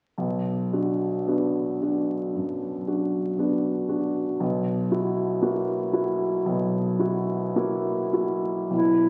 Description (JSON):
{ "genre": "classical, romantic duo for clarinet and grand piano", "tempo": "51-59 BPM", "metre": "4/4", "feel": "rubato", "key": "B minor", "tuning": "A4 = 440 Hz", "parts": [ { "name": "warm grand piano", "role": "accompaniment", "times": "0.2-9.1 s", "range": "B1 to F#4", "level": "-26 LUFS", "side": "equal", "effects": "none" }, { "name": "warm clarinet", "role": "melody", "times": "8.7-9.1 s", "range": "E4", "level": "-21 LUFS", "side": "equal", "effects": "none" } ], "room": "wet concert hall reverb, RT60 1.9 s", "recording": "very old 78 rpm record, vinyl crackle", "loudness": "-26 LUFS", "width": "mono", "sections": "0.2-8.7 A section", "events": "none", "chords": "0.2 Bm; 4.4 F#7/B" }